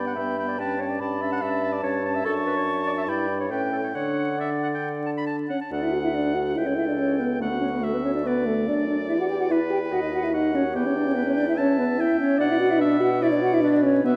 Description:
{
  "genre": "quick classical-period movement for wind quintet",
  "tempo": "144 BPM",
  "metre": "4/4",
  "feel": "rubato",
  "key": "D major",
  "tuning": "A4 = 440 Hz",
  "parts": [
    { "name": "hollow concert flute", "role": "melody", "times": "0.0-14.2 s", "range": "A4 to C#6", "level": "-33 LUFS", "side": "equal", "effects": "none" },
    { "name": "bright oboe", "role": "second line", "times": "0.0-14.2 s", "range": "B4 to B5", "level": "-34 LUFS", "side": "equal", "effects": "none" },
    { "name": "clear clarinet", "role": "accompaniment", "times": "0.0-14.2 s", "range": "F#4 to F#5", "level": "-34 LUFS", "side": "equal", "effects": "none" },
    { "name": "mellow French horn", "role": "accompaniment", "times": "0.0-14.1 s", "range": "A3 to G4", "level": "-26 LUFS", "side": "equal", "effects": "none" },
    { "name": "warm bassoon", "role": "bass", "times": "0.0-14.2 s", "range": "C#2 to D3", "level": "-32 LUFS", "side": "equal", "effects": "none" }
  ],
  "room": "wet recital hall reverb, RT60 1.7 s",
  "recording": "vinyl crackle",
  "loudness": "-24 LUFS",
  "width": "mono",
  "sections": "0.0-5.7 A section; 5.7-14.2 B section",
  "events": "none",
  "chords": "0.0 G; 0.6 A7/G; 2.2 D/F#; 3.1 Em7/G; 3.5 A7; 3.9 D; 6.6 A7/C#; 7.4 D; 9.1 Em; 9.9 B/D#; 10.7 Em; 12.4 Bm",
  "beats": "0.18 | 0.59 1.01 1.42 1.83 | 2.25 2.66 3.07 3.50 | 3.94 4.39 4.83 5.27 | 5.72 6.14 6.57 6.99 | 7.41 7.83 8.26 8.67 | 9.09 9.51 9.92 10.33 | 10.75 11.16 11.57 11.99 | 12.40 12.81 13.22 13.63 | 14.05"
}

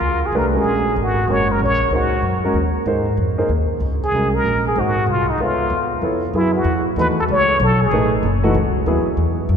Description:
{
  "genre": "modal jazz",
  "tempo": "190 BPM",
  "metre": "3/4",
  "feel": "swing 63% on 8ths",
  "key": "Eb dorian, F# dorian from 6.3 s",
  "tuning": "A4 = 440 Hz",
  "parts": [
    { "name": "trumpet with plunger mute", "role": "melody", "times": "0.0-8.1 s", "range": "Eb4 to C#5", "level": "-20 LUFS", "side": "equal", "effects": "none" },
    { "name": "upright bass", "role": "bass", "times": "0.0-9.6 s", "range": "Gb1 to Ab2", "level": "-20 LUFS", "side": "equal", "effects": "none" },
    { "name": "warm grand piano", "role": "accompaniment", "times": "0.3-9.1 s", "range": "E3 to E5", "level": "-21 LUFS", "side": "right 1 dB", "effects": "none" }
  ],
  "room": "wet cathedral reverb, RT60 4.4 s",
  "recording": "recorded in a church or concert hall",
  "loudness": "-16 LUFS",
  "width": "side -7 dB against mid",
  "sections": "0.0-6.3 A section; 6.3-9.6 B section",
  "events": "none",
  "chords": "0.0 Ebm7 (rootless); 2.5 Absus2; 5.4 Db7alt; 6.3 F#m11; 8.2 Eadd9/F#",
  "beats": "0.02 0.33 | 0.65 0.97 1.28 | 1.60 1.92 2.23 | 2.55 2.87 3.18 | 3.50 3.81 4.13 | 4.45 4.76 5.08 | 5.39 5.71 6.02 | 6.34 6.66 6.97 | 7.29 7.60 7.92 | 8.24 8.55 8.87 | 9.19 9.50"
}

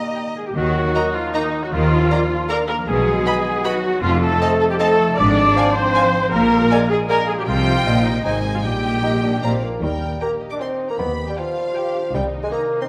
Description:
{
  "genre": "cinematic, playful, whimsical film cue",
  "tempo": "156 BPM",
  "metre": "3/4",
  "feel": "straight",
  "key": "Eb minor, Eb major from 5.2 s",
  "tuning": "A4 = 440 Hz",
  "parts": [
    { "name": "rich studio violin section", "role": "melody", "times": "0.0-12.8 s", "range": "Eb5 to B5", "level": "-30 LUFS", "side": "equal", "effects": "none" },
    { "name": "hollow concert flute", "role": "second line", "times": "0.0-9.4 s", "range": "Eb5 to D6", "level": "-29 LUFS", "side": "equal", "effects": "none" },
    { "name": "mellow clarinet", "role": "second line", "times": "0.0-9.6 s", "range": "Bb3 to F5", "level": "-32 LUFS", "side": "equal", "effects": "none" },
    { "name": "warm oboe", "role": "second line", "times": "0.0-9.4 s", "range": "Eb4 to Eb5", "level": "-28 LUFS", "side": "equal", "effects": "none" },
    { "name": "warm studio violin section", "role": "second line", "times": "0.0-12.8 s", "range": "C5 to D6", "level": "-36 LUFS", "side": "equal", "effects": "none" },
    { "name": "mellow bassoon", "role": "accompaniment", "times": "0.0-12.9 s", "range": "F3 to Eb4", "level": "-28 LUFS", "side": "equal", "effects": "none" },
    { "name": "warm studio viola section", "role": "accompaniment", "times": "0.0-12.9 s", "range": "Eb4 to D5", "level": "-25 LUFS", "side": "equal", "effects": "none" },
    { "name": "concert harp", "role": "arpeggios", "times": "0.0-12.9 s", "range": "F2 to Bb5", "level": "-30 LUFS", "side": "equal", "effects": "none" },
    { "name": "mellow French horn section", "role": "sustained chords", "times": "0.2-9.4 s", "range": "Eb3 to D4", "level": "-28 LUFS", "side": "equal", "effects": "none" },
    { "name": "rich studio cello section", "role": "bass", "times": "0.6-12.4 s", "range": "F2 to Eb3", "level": "-25 LUFS", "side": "equal", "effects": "none" },
    { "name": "rich studio double bass section", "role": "bass", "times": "0.6-12.4 s", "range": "F1 to Eb2", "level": "-27 LUFS", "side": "equal", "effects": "none" }
  ],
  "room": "moderate scoring stage reverb, RT60 2.0 s",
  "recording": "none",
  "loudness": "-19 LUFS",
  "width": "mono",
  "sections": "0.6-9.8 A section; 9.8-12.9 B section",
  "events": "none",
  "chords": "0.0 Eb; 0.6 Ebm; 1.7 Bb/Eb; 2.9 B; 4.0 F7; 5.2 Fm/Ab; 6.3 Bb7; 7.5 Cm; 8.2 Ab; 8.6 Eb/Bb; 9.4 Bb; 9.8 Eb; 11.0 G7/Eb; 12.1 Cm7",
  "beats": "0.17 | 0.56 0.95 1.34 | 1.73 2.11 2.50 | 2.88 3.26 3.65 | 4.03 4.41 4.80 | 5.18 5.56 5.94 | 6.33 6.71 7.09 | 7.48 7.86 8.25 | 8.64 9.04 9.43 | 9.82 10.21 10.60 | 10.99 11.37 11.76 | 12.14 12.52"
}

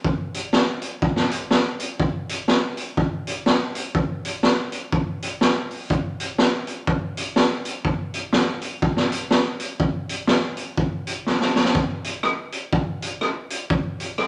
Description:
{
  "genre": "ska",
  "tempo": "123 BPM",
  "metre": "4/4",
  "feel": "swing 60% on 8ths",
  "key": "none",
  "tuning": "none",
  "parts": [
    { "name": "raw garage drum kit", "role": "drums", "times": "0.0-14.3 s", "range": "hi-hat, kick drum, rim click, snare drum", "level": "-23 LUFS", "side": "equal", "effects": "none" }
  ],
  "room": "moderate large studio reverb, RT60 1.2 s",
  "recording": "none",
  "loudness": "-23 LUFS",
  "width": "mono",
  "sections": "0.0-11.8 A section; 11.8-14.3 B section",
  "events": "drum fill 11.3-11.8",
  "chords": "none",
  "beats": "| 0.05 0.54 1.02 1.51 | 2.00 2.49 2.97 3.46 | 3.95 4.44 4.92 5.41 | 5.90 6.39 6.87 7.36 | 7.85 8.34 8.82 9.31 | 9.80 10.29 10.78 11.26 | 11.75 12.24 12.73 13.22 | 13.71 14.19"
}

